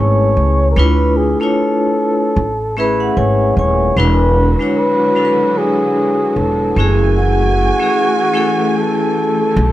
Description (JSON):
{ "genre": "hip hop", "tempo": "75 BPM", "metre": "4/4", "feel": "swing 58% on 16ths", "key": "unclear", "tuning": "A4 = 436 Hz", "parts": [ { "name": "breathy flugelhorn", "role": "melody", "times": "0.0-9.7 s", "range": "F#4 to C#5", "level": "-17 LUFS", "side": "equal", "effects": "analog delay" }, { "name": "vibraphone with hard mallets", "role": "accompaniment", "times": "0.0-9.6 s", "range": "G#3 to G#5", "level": "-16 LUFS", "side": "left 1 dB", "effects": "none" }, { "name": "upright bass", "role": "bass", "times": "0.0-9.7 s", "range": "D#1 to D2", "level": "-15 LUFS", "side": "equal", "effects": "none" }, { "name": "warm symphonic string section", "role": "sustained chords", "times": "4.0-9.7 s", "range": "D3 to G#5", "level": "-23 LUFS", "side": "right 2 dB", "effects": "none" } ], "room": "light reverb, studio reverb", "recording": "none", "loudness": "-12 LUFS", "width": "side -14 dB against mid", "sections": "0.0-4.0 A section; 4.0-9.7 B section", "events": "vibraphone fill 2.4-4.0", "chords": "0.0 Amaj9; 0.8 Dm6; 2.4 Amaj7; 4.0 E9; 6.8 F#m9" }